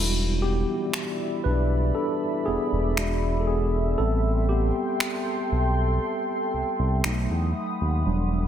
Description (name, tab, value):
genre	contemporary R&B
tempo	59 BPM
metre	4/4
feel	straight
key	E minor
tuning	A4 = 440 Hz
part	mellow tine electric piano	accompaniment	0.0-8.5 s	E3 to B4	-27 LUFS	right 1 dB	medium stereo tremolo
part	deep dark ambient pad	sustained chords	0.0-8.5 s	E4 to E6	-30 LUFS	left 1 dB	chorus, built-in reverb
part	smooth synth bass	bass	0.0-8.5 s	E1 to E2	-24 LUFS	equal	none
part	electronic finger snaps	drums	0.9-7.3 s	none	-30 LUFS	equal	soft clipping on snare
room	light reverb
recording	dense, heavily limited modern master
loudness	-22 LUFS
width	side -10 dB against mid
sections	0.0-8.5 A section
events	break 0.0-8.5; tine electric piano solo 0.0-8.5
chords	0.0 Em7; 3.0 E7; 4.0 Am7; 7.0 B7